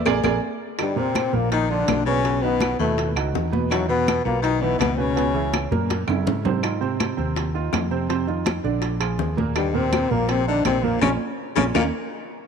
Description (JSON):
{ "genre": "Afro-Cuban jazz", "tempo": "164 BPM", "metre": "4/4", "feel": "straight", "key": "unclear", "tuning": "A4 = 441 Hz", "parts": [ { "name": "warm baby grand piano", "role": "accompaniment", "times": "0.1-11.9 s", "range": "Bb2 to D5", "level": "-26 LUFS", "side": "right 9 dB", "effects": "none" }, { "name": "mellow fretless electric bass", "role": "bass", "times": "0.1-11.9 s", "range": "A#1 to Ab2", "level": "-26 LUFS", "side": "left 1 dB", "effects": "none" }, { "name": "claves", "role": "percussion", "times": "0.1-11.8 s", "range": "none", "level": "-34 LUFS", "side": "left 1 dB", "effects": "none" }, { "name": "congas", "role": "percussion", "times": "0.1-11.8 s", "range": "none", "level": "-29 LUFS", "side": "left 1 dB", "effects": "none" }, { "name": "cowbell and bongos", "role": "percussion", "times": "0.1-11.8 s", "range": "none", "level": "-32 LUFS", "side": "left 14 dB", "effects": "none" }, { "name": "timbales", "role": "percussion", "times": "0.1-11.8 s", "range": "none", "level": "-31 LUFS", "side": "right 12 dB", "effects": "none" }, { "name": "warm trombone", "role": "melody", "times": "0.8-5.7, 9.6-11.8 s", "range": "Gb3 to Eb4", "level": "-24 LUFS", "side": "left 4 dB", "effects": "none" }, { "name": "clear baritone saxophone", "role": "second line", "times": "0.8-5.7, 9.6-11.8 s", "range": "Gb2 to Eb3", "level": "-28 LUFS", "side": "left 10 dB", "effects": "none" } ], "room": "moderate echo chamber reverb, RT60 2.7 s", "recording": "1960s-style stereo with parts hard left and right", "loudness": "-20 LUFS", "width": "side -6 dB against mid", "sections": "0.8-12.5 A section", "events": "drum fill 0.0-0.8, 5.5-6.6, 11.0-12.5; band accent 0.0-0.8, 11.0-12.5", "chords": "0.1 A#7; 0.8 Ebsus2; 2.2 B9; 3.7 E5; 5.2 Dbm7; 5.9 Gb9; 6.6 Ab6; 8.1 F5; 8.8 Bb7; 9.6 Eb5; 11.0 Bbm; 11.8 Eb5" }